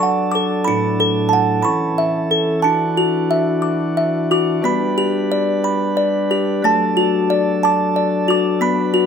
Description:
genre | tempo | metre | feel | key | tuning
children's music, lullaby | 60 BPM (dotted quarters) | 6/8 | rubato | D major | A4 = 440 Hz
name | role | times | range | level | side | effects
music box | melody | 0.0-9.1 s | A3 to D6 | -16 LUFS | equal | none
chamber organ, sparkling flutes | sustained chords | 0.0-9.1 s | A2 to B4 | -20 LUFS | equal | none
room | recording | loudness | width
moderate recital hall reverb, RT60 1.4 s | close, detailed microphones | -15 LUFS | side -7 dB against mid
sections
0.0-4.6 A section; 4.6-9.1 B section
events
none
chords
0.0 D; 0.7 D/A; 1.6 A; 2.6 Dadd9; 4.6 G; 6.6 D/F#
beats
| 0.67 1.65 | 2.63 3.63 | 4.64 5.65 | 6.64 7.64 | 8.61

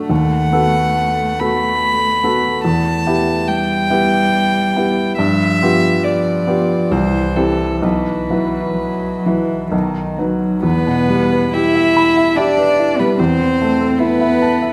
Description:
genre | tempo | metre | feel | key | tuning
classical, slow romantic movement for piano trio | 62-75 BPM | 3/4 | rubato | E minor | A4 = 440 Hz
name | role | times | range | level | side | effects
warm cello | second line | 0.0-14.7 s | D#3 to E4 | -22 LUFS | equal | none
warm baby grand piano | accompaniment | 0.0-14.7 s | B1 to B5 | -19 LUFS | equal | none
warm violin | melody | 0.1-14.7 s | A4 to B5 | -21 LUFS | equal | none
room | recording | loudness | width
wet recital hall reverb, RT60 1.4 s | none | -16 LUFS | mono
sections
0.0-10.6 A section; 10.6-14.7 B section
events
none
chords
0.1 B7/D#; 2.6 Em; 5.2 G7; 6.9 C; 7.8 Bsus4; 9.7 B; 10.6 Em; 13.2 Am/E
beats
| 0.10 0.96 1.82 | 2.65 3.49 4.34 | 5.19 6.05 6.92 | 7.83 8.79 9.72 | 10.64 11.54 12.37 | 13.19 13.99

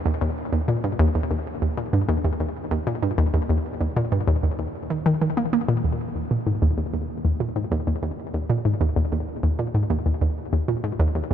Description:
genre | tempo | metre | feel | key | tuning
ambient | 96 BPM | 4/4 | straight | unclear | A4 = 443 Hz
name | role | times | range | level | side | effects
hollow square pluck | solo | 0.1-11.3 s | Eb2 to Bb3 | -21 LUFS | equal | chorus, ping-pong delay
room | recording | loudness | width
moderate huge ambient reverb, RT60 8.2 s | none | -21 LUFS | side -10 dB against mid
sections
0.0-5.8 A section; 5.8-11.3 B section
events
none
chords
none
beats
0.21 | 0.84 1.47 2.09 2.71 | 3.34 3.96 4.59 5.21 | 5.84 6.46 7.09 7.71 | 8.34 8.96 9.59 10.21 | 10.84

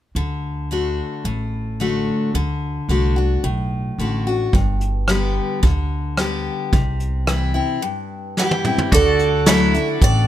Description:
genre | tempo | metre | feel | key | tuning
honky-tonk and classic country | 110 BPM | 4/4 | straight | D mixolydian | A4 = 440 Hz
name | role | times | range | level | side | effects
upright bass | bass | 0.1-10.3 s | G1 to D2 | -21 LUFS | equal | none
picked steel-string acoustic guitar | accompaniment | 0.2-10.3 s | G2 to G4 | -22 LUFS | left 3 dB | none
vintage brush drum kit | drums | 4.5-10.1 s | hi-hat, kick drum, rim click, snare drum, toms | -18 LUFS | right 1 dB | none
picked acoustic archtop guitar | melody | 8.4-10.3 s | G4 to E5 | -19 LUFS | right 5 dB | none
bright tonewheel organ | accompaniment | 8.9-10.3 s | D4 to A4 | -28 LUFS | right 2 dB | overdrive, slow rotary speaker
pedal steel guitar | sustained chords | 8.9-10.3 s | F#4 to D5 | -27 LUFS | equal | none
room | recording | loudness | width
little or no reverb | close, detailed microphones | -17 LUFS | side -12 dB against mid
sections
0.2-8.9 A section; 8.9-10.3 B section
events
drum fill 8.4-8.9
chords
0.2 D; 4.5 G; 6.7 C; 8.9 Dadd9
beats
| 0.16 0.71 1.25 1.80 | 2.35 2.90 3.44 3.99 | 4.54 5.09 5.64 6.18 | 6.73 7.28 7.83 8.38 | 8.92 9.47 10.02

